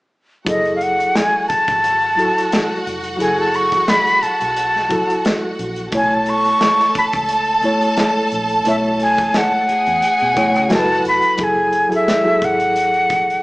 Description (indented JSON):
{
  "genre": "lush 1970s-style soul",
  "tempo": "88 BPM",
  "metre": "4/4",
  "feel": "swing 54% on 16ths",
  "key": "F# minor",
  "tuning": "A4 = 441 Hz",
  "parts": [
    { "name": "reed electric piano", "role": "accompaniment", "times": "0.4-13.4 s", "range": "B2 to C#5", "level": "-21 LUFS", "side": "equal", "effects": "fast tremolo" },
    { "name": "breathy jazz flute", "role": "melody", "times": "0.5-13.4 s", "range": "D#5 to C#6", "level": "-16 LUFS", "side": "equal", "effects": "none" },
    { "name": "rich studio violin section", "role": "second line", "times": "0.5-11.4 s", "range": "F#4 to A5", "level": "-22 LUFS", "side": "right 1 dB", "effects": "none" },
    { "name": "vintage muted fingered electric bass", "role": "bass", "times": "0.5-13.4 s", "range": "E#1 to B2", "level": "-34 LUFS", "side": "equal", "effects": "none" },
    { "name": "modern studio drum kit", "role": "drums", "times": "0.5-13.4 s", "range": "hi-hat, kick drum, snare drum", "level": "-22 LUFS", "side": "equal", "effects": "none" }
  ],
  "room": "moderate large studio reverb, RT60 1.3 s",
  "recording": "band playing live in one room, small speaker sound",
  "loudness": "-14 LUFS",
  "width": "side -22 dB against mid",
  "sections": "0.5-11.4 A section; 11.4-13.4 B section",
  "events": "none",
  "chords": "0.5 F#m9; 5.9 B9sus4; 10.7 F#m7; 11.4 F#m9"
}